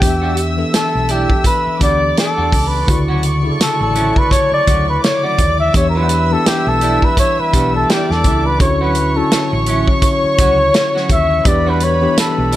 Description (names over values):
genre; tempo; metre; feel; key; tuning
lush 1970s-style soul; 84 BPM; 4/4; swing 58% on 16ths; E dorian; A4 = 438 Hz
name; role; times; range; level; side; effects
mellow flugelhorn; melody; 0.0-12.6 s; G4 to E5; -16 LUFS; equal; none
warm studio violin section; second line; 0.0-12.6 s; B4 to E6; -23 LUFS; left 1 dB; none
tine electric piano; accompaniment; 0.0-12.6 s; C#3 to A4; -21 LUFS; left 1 dB; medium stereo tremolo
clean electric guitar; riff; 0.0-12.6 s; F#3 to F#4; -26 LUFS; right 5 dB; none
hollow-body short-scale fingered electric bass; bass; 0.0-12.6 s; A1 to E2; -19 LUFS; equal; none
warm soul drum kit; drums; 0.0-12.6 s; hi-hat, kick drum, snare drum; -16 LUFS; equal; none
mellow French horn section; sustained chords; 2.9-12.6 s; F#3 to E4; -28 LUFS; left 3 dB; none
room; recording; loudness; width
light reverb, small room ambience; none; -12 LUFS; side -14 dB against mid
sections
0.0-12.6 A section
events
flugelhorn solo 0.0-12.6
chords
0.0 Em7; 2.9 Dmaj9; 5.7 Em7; 8.6 Dmaj9; 11.5 Em7